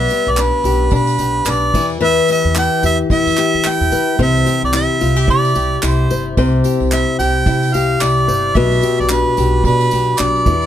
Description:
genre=acoustic pop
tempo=110 BPM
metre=4/4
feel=swing 60% on 16ths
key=C major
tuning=A4 = 436 Hz
part: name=warm harmonica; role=melody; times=0.0-10.7 s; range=B4 to G5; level=-17 LUFS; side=right 3 dB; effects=tape echo
part: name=flamenco guitar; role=accompaniment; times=0.0-10.7 s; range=B2 to C5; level=-17 LUFS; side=left 5 dB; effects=none
part: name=upright bass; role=bass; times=0.0-10.7 s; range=G1 to E3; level=-18 LUFS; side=right 1 dB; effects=none
part: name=unplugged drum kit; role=drums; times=0.1-10.6 s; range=crash cymbal, handclaps, kick drum, tambourine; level=-21 LUFS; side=right 1 dB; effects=none
part: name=tambourine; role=percussion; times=0.1-10.7 s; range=none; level=-34 LUFS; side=right 9 dB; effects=none
room=light reverb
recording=close, detailed microphones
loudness=-12 LUFS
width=side -10 dB against mid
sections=0.0-10.7 A section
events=none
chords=0.0 G/B; 1.7 Em; 4.2 C; 8.6 G/B

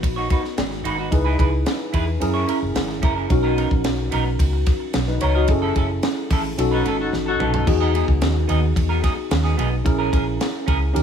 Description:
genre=polished 1980s jazz-funk pop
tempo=110 BPM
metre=4/4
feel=straight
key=unclear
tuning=A4 = 439 Hz
part: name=mellow tine electric piano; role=accompaniment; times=0.0-11.0 s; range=B3 to D#5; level=-24 LUFS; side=left 2 dB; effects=overdrive, analog chorus
part: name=semi-hollow electric guitar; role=riff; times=0.0-11.0 s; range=B3 to C#5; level=-26 LUFS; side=right 5 dB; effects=wide subtle chorus
part: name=vintage muted fingered electric bass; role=bass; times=0.0-11.0 s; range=F#1 to F#2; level=-22 LUFS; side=equal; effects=none
part: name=tight funk drum kit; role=drums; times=0.0-11.0 s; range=crash cymbal, hi-hat, kick drum, ride cymbal, snare drum, toms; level=-23 LUFS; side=equal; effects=gated reverb
part: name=warm horn section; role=second line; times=6.7-7.7 s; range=D#4 to A4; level=-25 LUFS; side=left 5 dB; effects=none
room=studio reverb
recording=none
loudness=-18 LUFS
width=side -8 dB against mid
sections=0.0-11.0 A section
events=band accent 5.5-7.7; drum fill 7.1-7.7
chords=0.0 G#m7; 1.1 C#m7; 2.2 F#7; 3.3 Bmaj7; 5.5 F#m7; 6.6 B7; 7.7 Emaj7; 9.9 A#m7b5

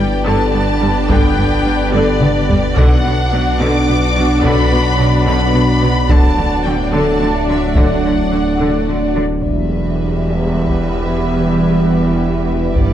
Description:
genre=cinematic, hybrid orchestral and electronic film score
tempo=72 BPM (dotted quarters)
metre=6/8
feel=straight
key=E minor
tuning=A4 = 443 Hz
part: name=rich symphonic violin section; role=melody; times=0.0-9.1 s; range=D5 to D6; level=-21 LUFS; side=left 2 dB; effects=low-pass filter
part: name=rich symphonic violin section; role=second line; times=0.0-12.9 s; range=F#4 to E5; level=-25 LUFS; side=left 2 dB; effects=none
part: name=rich symphonic viola section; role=accompaniment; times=0.0-12.9 s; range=D3 to G4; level=-21 LUFS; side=right 1 dB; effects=low-pass filter
part: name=deep dark ambient pad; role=sustained chords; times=0.0-12.9 s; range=D3 to D5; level=-19 LUFS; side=equal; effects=chorus, built-in reverb, low-pass filter
part: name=clear symphonic cello section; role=bass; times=0.0-12.9 s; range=E2 to D3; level=-20 LUFS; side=right 2 dB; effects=none
part: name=swelling detuned saw bass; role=bass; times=0.0-12.9 s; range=D1 to B1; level=-19 LUFS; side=equal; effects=none
part: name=taiko ensemble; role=drums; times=1.1-12.9 s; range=none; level=-16 LUFS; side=equal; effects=none
room=wet recital hall reverb, RT60 1.4 s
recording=dark, warm production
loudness=-12 LUFS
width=side -11 dB against mid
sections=0.0-9.4 A section; 9.4-12.9 B section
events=drum fill 1.9-2.8; filter sweep 9.4-12.9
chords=0.0 G; 2.8 Bm; 6.1 D; 9.4 Em

